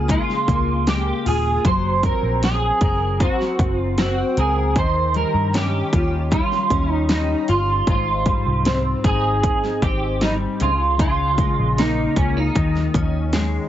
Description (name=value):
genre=indie pop, bedroom pop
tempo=77 BPM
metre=4/4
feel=straight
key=Ab major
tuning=A4 = 440 Hz
part: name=electric guitar through a small old amp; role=melody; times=0.0-13.7 s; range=Db4 to C5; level=-22 LUFS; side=right 2 dB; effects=ensemble chorus
part: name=fingerpicked steel-string acoustic guitar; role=accompaniment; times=0.0-13.7 s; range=Ab2 to Bb4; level=-24 LUFS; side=left 3 dB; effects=ensemble chorus, warbly pitch drift
part: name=vintage muted picked electric bass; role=bass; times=0.0-13.6 s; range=Eb1 to G2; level=-22 LUFS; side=equal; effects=none
part: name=pop drum kit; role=drums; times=0.1-13.5 s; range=hi-hat, kick drum, snare drum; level=-22 LUFS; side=equal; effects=overdrive
room=little or no reverb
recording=heavily compressed radio sound, nothing above 7.8 kHz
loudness=-17 LUFS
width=side -11 dB against mid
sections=0.0-13.7 A section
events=none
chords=0.0 Db6; 1.6 Gbadd9; 4.8 Eb9; 7.9 Abmaj7; 10.6 Db6; 12.6 Eb9sus4